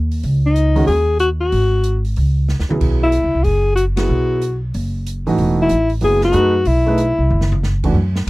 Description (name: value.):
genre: modal jazz.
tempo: 187 BPM.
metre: 4/4.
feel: swing 64% on 8ths.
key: unclear.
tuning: A4 = 440 Hz.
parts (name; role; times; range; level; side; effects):
upright bass; bass; 0.0-8.3 s; E1 to F#2; -17 LUFS; equal; none.
open jazz drum kit; drums; 0.1-8.3 s; crash cymbal, hi-hat, kick drum, ride cymbal, snare drum, toms; -26 LUFS; equal; none.
breathy alto saxophone; melody; 0.5-7.6 s; D#4 to G#4; -17 LUFS; left 2 dB; none.
warm concert grand piano; accompaniment; 0.8-8.0 s; D#3 to B4; -20 LUFS; right 3 dB; none.
room: little or no reverb.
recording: dry, close 1970s-style studio recording.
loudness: -14 LUFS.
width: side -20 dB against mid.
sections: 0.0-8.0 A section.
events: drum fill 2.5-2.8, 7.3-7.6; band accent 3.9.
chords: 0.0 G#7sus4; 2.8 B7sus4.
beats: | 0.24 0.56 0.88 1.20 | 1.52 1.85 2.17 2.49 | 2.81 3.13 3.45 3.77 | 4.10 4.42 4.74 5.06 | 5.38 5.70 6.03 6.35 | 6.67 6.99 7.31 7.63 | 7.96 8.28.